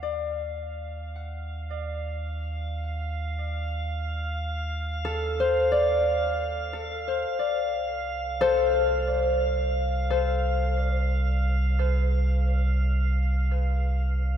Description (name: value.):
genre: ambient.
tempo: free time.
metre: none.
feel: none.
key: unclear.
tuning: A4 = 439 Hz.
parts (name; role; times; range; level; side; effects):
concert harp; arpeggios; 0.0-10.6 s; A4 to D5; -26 LUFS; left 2 dB; ping-pong delay.
warm sub bass; bass; 0.0-14.4 s; C2 to Eb2; -27 LUFS; right 1 dB; none.
drifting glass-harmonics texture; texture; 0.0-14.4 s; F5; -34 LUFS; right 4 dB; chorus, built-in reverb.
room: moderate lush hall reverb, RT60 3.3 s.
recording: dreamy mix soaked in reverb.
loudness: -24 LUFS.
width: side -9 dB against mid.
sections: 0.0-14.4 A section.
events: fade-in on sub bass 0.0-14.4; fade-in on synth texture 0.0-14.4.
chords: 0.0 Ebsus2; 7.3 F/C.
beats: free time.